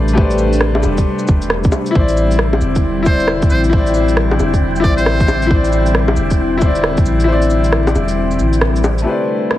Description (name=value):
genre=future garage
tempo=135 BPM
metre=4/4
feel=swing 63% on 16ths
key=unclear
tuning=A4 = 440 Hz
part: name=bright upright piano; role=accompaniment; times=0.0-9.6 s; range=A3 to D5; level=-18 LUFS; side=left 3 dB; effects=vintage 12-bit sampler grit, sidechain pumping, tape echo
part: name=airy breathy pad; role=sustained chords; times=0.0-9.6 s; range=C3 to E4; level=-20 LUFS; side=left 1 dB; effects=chorus, sidechain pumping
part: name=soft 808-style bass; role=bass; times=0.0-9.0 s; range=E1 to C2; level=-17 LUFS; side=equal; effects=sidechain pumping
part: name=electronic shaker, cabasa, rim click and bongos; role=drums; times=0.1-9.6 s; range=none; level=-19 LUFS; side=equal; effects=vintage 12-bit sampler grit
part: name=electronic kick drum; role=drums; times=0.2-7.0 s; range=none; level=-14 LUFS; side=equal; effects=vintage 12-bit sampler grit
part: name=wind-like tuned noise texture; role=texture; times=2.7-9.1 s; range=G5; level=-30 LUFS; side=right 4 dB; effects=built-in reverb
part: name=trumpet with metal mute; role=melody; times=3.1-5.6 s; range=C5 to D5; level=-23 LUFS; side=right 1 dB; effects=analog delay
room=light reverb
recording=heavily compressed radio sound, multiband compression, vinyl crackle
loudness=-12 LUFS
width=side -14 dB against mid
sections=0.0-9.1 A section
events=kick drops out 7.3-9.1; band accent 8.6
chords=0.0 Am11; 2.0 Cadd9; 9.1 Am11